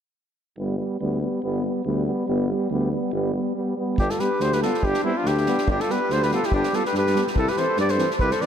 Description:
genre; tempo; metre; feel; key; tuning
balkan folk, Balkan brass band; 142 BPM; 2/4; swing 55% on 16ths; G mixolydian; A4 = 440 Hz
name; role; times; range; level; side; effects
clear euphonium; accompaniment; 0.6-8.5 s; B3 to C4; -29 LUFS; left 3 dB; none
warm trombone; accompaniment; 0.6-8.5 s; E3 to G3; -29 LUFS; right 5 dB; none
warm tuba; bass; 0.6-8.3 s; G1 to G2; -26 LUFS; equal; none
mellow trumpet; melody; 4.0-8.5 s; E4 to D5; -23 LUFS; equal; analog delay
clear alto saxophone; second line; 4.0-8.5 s; C4 to B4; -27 LUFS; left 4 dB; analog delay
unplugged drum kit; percussion; 4.0-8.5 s; kick drum, snare drum; -29 LUFS; equal; none
room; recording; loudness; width
wet huge ambient reverb, RT60 7.7 s; dreamy mix soaked in reverb; -21 LUFS; side -8 dB against mid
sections
0.6-4.0 A section; 4.0-8.5 B section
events
none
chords
0.6 G; 7.4 C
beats
| 0.57 1.00 | 1.43 1.85 | 2.28 2.71 | 3.13 3.56 | 3.98 4.41 | 4.83 5.25 | 5.67 6.09 | 6.51 6.94 | 7.36 7.78 | 8.20

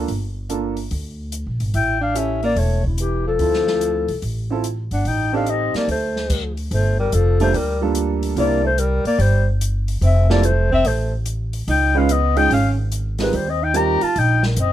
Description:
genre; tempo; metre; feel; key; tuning
jazz, small-group swing and bop; 145 BPM; 4/4; swing 66% on 8ths; D minor, G minor from 6.7 s; A4 = 440 Hz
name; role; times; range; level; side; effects
warm baby grand piano; accompaniment; 0.0-14.0 s; G3 to B4; -23 LUFS; right 6 dB; none
upright bass; bass; 0.0-14.7 s; E1 to Eb2; -20 LUFS; equal; none
open jazz drum kit; drums; 0.1-14.7 s; crash cymbal, hi-hat, kick drum, snare drum; -30 LUFS; left 1 dB; none
warm alto saxophone; second line; 1.7-14.7 s; C#3 to G4; -25 LUFS; right 3 dB; none
breathy clarinet; melody; 1.8-14.7 s; E4 to Bb5; -21 LUFS; left 4 dB; none
room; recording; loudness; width
little or no reverb; close, detailed microphones; -17 LUFS; side -12 dB against mid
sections
0.0-6.7 A section; 6.7-14.7 B section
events
none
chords
0.1 Gm7; 1.7 A7; 3.4 Dm9; 5.1 Am7b5; 5.9 D5; 6.7 Gm9; 8.4 C7; 10.0 Fmaj7; 11.7 C#9; 13.3 Eb6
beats
| 0.09 0.50 0.92 1.33 | 1.75 2.16 2.57 2.99 | 3.40 3.82 4.23 4.65 | 5.06 5.47 5.89 6.30 | 6.72 7.13 7.54 7.96 | 8.37 8.79 9.20 9.61 | 10.03 10.44 10.85 11.27 | 11.68 12.09 12.51 12.92 | 13.33 13.74 14.16 14.57

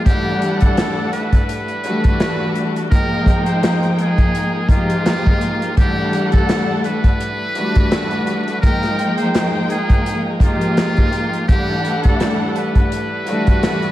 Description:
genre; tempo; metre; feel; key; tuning
hip hop, boom-bap hip-hop; 84 BPM; 4/4; swing 55% on 16ths; unclear; A4 = 438 Hz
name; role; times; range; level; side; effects
trumpet with metal mute; melody; 0.0-13.9 s; F4 to C5; -24 LUFS; equal; high-pass filter, low-pass filter, ping-pong delay
bright tonewheel organ; sustained chords; 0.0-13.9 s; G3 to G5; -30 LUFS; right 1 dB; none
warm studio string section; accompaniment; 0.1-13.9 s; E3 to G5; -19 LUFS; left 1 dB; cassette tape, high-pass filter, low-pass filter
vintage drum kit; drums; 0.1-13.9 s; handclaps, hi-hat, kick drum, snare drum; -17 LUFS; equal; none
room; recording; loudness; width
moderate lush hall reverb, RT60 1.9 s, studio reverb; dreamy mix soaked in reverb, vinyl crackle; -15 LUFS; side -14 dB against mid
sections
0.0-13.9 A section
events
none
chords
0.1 Em11; 2.9 Fm11; 5.8 Em11; 8.6 Fm11; 11.5 Em11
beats
| 0.06 0.77 1.49 2.20 | 2.91 3.63 4.34 5.06 | 5.77 6.49 7.20 7.91 | 8.63 9.34 10.06 10.77 | 11.49 12.20 12.91 13.63

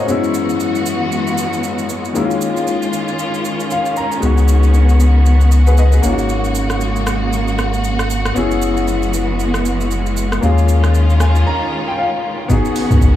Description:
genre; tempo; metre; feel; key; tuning
amapiano; 116 BPM; 4/4; swing 58% on 16ths; Db mixolydian; A4 = 440 Hz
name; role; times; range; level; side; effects
warm grand piano; accompaniment; 0.0-13.2 s; Gb2 to Bb5; -19 LUFS; left 4 dB; none
warm studio string section; sustained chords; 0.0-13.2 s; Db3 to Gb4; -20 LUFS; right 1 dB; none
afro-pop drum kit; drums; 0.1-13.2 s; hi-hat, kick drum, rim click, shaker; -22 LUFS; equal; none
warm sub bass; bass; 4.2-11.4 s; Gb1 to Eb2; -13 LUFS; equal; none
deep log drum bass; bass; 12.9-13.2 s; Db2; -10 LUFS; equal; none
room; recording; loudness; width
digital ambience; small room reverb; -13 LUFS; side -12 dB against mid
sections
0.0-12.5 A section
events
grand piano fill 3.4-4.2, 10.9-12.5; break 11.5-12.5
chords
0.1 Gb9sus4; 2.2 Eb9sus4; 4.2 Db9sus4; 6.0 Ab9sus4; 8.4 Gb9sus4; 10.4 Eb9sus4; 12.5 Db9sus4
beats
| 0.09 0.60 1.12 1.64 | 2.15 2.67 3.19 3.71 | 4.22 4.74 5.26 5.78 | 6.29 6.81 7.33 7.84 | 8.36 8.88 9.39 9.91 | 10.43 10.95 11.46 11.98 | 12.50 13.02

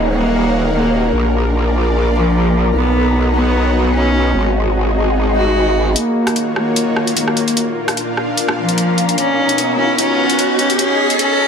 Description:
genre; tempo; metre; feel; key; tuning
heavy wobble dubstep; 149 BPM; 4/4; swing 54% on 16ths, half-time; Eb minor; A4 = 440 Hz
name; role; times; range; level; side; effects
warm cello; melody; 0.0-11.5 s; F3 to Gb4; -17 LUFS; equal; low-pass filter, tape echo
supersaw pad; sustained chords; 0.0-11.5 s; Bb2 to Gb5; -22 LUFS; equal; vintage 12-bit sampler grit
growl bass; bass; 0.0-5.9 s; Eb1 to B1; -16 LUFS; equal; chorus, overdrive
ethereal airy pad; texture; 0.0-11.5 s; B3 to D6; -22 LUFS; left 2 dB; ensemble chorus, built-in reverb, tremolo
swell and riser; sound effects; 5.3-11.5 s; none; -22 LUFS; equal; none
dubstep drum kit; drums; 6.0-11.3 s; hi-hat, rim click; -19 LUFS; left 1 dB; high-pass filter on hats, low-pass filter on hats, high-pass filter on snare, low-pass filter on snare
room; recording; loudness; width
light reverb; high-pass filter; -13 LUFS; side -6 dB against mid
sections
0.0-6.0 A section; 6.0-11.5 B section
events
swell 5.3-6.0; build-up 6.0-11.5; filter sweep on cello 6.0-11.5; riser 7.4-11.5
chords
0.0 Ebm7; 1.1 Bb; 2.7 Badd9; 4.3 Abm; 6.0 Ebm7; 7.6 Bb; 9.2 Badd9; 10.8 Abm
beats
0.32 0.72 | 1.13 1.53 1.93 2.33 | 2.74 3.14 3.54 3.94 | 4.35 4.75 5.15 5.56 | 5.96 6.36 6.76 7.17 | 7.57 7.97 8.37 8.78 | 9.18 9.58 9.98 10.39 | 10.79 11.19

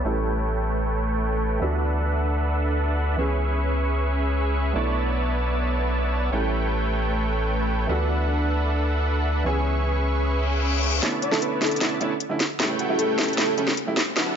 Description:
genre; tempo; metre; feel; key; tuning
future bass; 153 BPM; 4/4; half-time; unclear; A4 = 439 Hz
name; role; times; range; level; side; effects
warm baby grand piano; accompaniment; 0.0-14.4 s; C#3 to C#6; -30 LUFS; right 3 dB; tape echo
dense compressed supersaw; riff; 0.0-14.4 s; A3 to C#6; -26 LUFS; right 1 dB; low-pass filter, tape echo
saturated sub bass; bass; 0.0-11.0 s; A1 to D2; -24 LUFS; equal; tube saturation
reverse cymbal and riser; sound effects; 10.4-14.4 s; none; -32 LUFS; left 5 dB; none
trap drum kit; drums; 11.0-14.2 s; hi-hat, snare drum; -24 LUFS; left 1 dB; high-pass filter on snare, low-pass filter on snare, high-pass filter on hats, low-pass filter on hats
airy dreamy lead; melody; 11.2-13.5 s; F#4 to D5; -27 LUFS; left 1 dB; chorus
room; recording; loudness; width
light reverb; high-pass filter, low-pass filter, nothing above 7.6 kHz; -21 LUFS; side -8 dB against mid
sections
0.0-11.0 A section; 11.0-14.4 B section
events
filter sweep 0.0-11.0; reverse cymbal 10.4-11.0; build-up 11.0-14.4; drum fill 11.0-14.4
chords
0.0 A7; 1.6 D69; 3.2 C#m7; 4.8 Bm11; 6.3 A7; 7.9 D69; 9.5 C#m7; 11.0 Bm11; 12.6 A7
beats
| 0.05 0.44 0.83 1.22 | 1.62 2.01 2.40 2.79 | 3.18 3.58 3.97 4.36 | 4.75 5.14 5.54 5.93 | 6.32 6.71 7.11 7.50 | 7.89 8.28 8.68 9.07 | 9.46 9.85 10.24 10.63 | 11.03 11.42 11.81 12.20 | 12.60 12.99 13.38 13.77 | 14.16

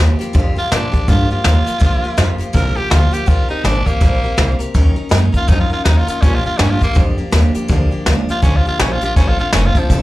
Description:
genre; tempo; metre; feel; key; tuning
rockabilly; 163 BPM; 4/4; swing 60% on 8ths; Bb major; A4 = 440 Hz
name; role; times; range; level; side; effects
picked steel-string acoustic guitar; accompaniment; 0.0-10.0 s; Bb2 to Bb4; -23 LUFS; left 2 dB; slapback echo
upright bass; bass; 0.0-10.0 s; F1 to Bb2; -16 LUFS; equal; none
jazz brush drum kit; drums; 0.2-10.0 s; hi-hat, kick drum, snare drum; -16 LUFS; equal; none
breathy tenor saxophone; melody; 0.6-10.0 s; F3 to Bb4; -20 LUFS; equal; slapback echo
room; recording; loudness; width
studio reverb; live gig heard through the venue's PA, club ambience; -12 LUFS; side -17 dB against mid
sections
0.0-10.0 A section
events
none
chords
0.0 Bb6; 3.3 Eb6; 4.8 Ebm7; 6.2 Bb6; 9.2 F6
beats
| 0.35 0.72 1.08 1.45 | 1.82 2.19 2.55 2.92 | 3.29 3.66 4.02 4.39 | 4.76 5.12 5.49 5.86 | 6.23 6.59 6.96 7.33 | 7.70 8.07 8.43 8.80 | 9.17 9.54 9.90

